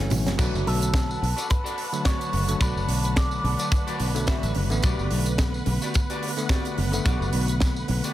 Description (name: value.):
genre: nu-disco, nu disco.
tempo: 108 BPM.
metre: 4/4.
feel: swing 55% on 16ths.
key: B minor.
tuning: A4 = 439 Hz.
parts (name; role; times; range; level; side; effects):
bell-like tine electric piano; accompaniment; 0.0-8.1 s; D3 to C#4; -30 LUFS; equal; medium stereo tremolo, sidechain pumping, analog delay.
bright studio string section; sustained chords; 0.0-8.1 s; D3 to B5; -35 LUFS; equal; sidechain pumping.
fingered electric bass; bass; 0.0-8.0 s; F#1 to B1; -26 LUFS; equal; sidechain pumping.
tight funk drum kit; drums; 0.1-8.1 s; crash cymbal, hi-hat, snare drum, tambourine, toms; -31 LUFS; right 1 dB; analog delay.
clean electric guitar; riff; 0.4-8.1 s; F#4 to E5; -35 LUFS; left 1 dB; lush chorus, analog delay.
kick drum; drums; 0.4-7.7 s; none; -23 LUFS; equal; none.
electric guitar with an envelope filter; melody; 0.7-4.5 s; A4 to D5; -32 LUFS; equal; tape echo.
room: light reverb, studio ambience.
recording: echo-heavy mix.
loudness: -22 LUFS.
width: side -14 dB against mid.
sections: 0.4-8.1 A section.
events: drum fill 0.0-0.4; drop 0.4-8.1.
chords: 0.4 Bm7; 4.8 Gmaj7.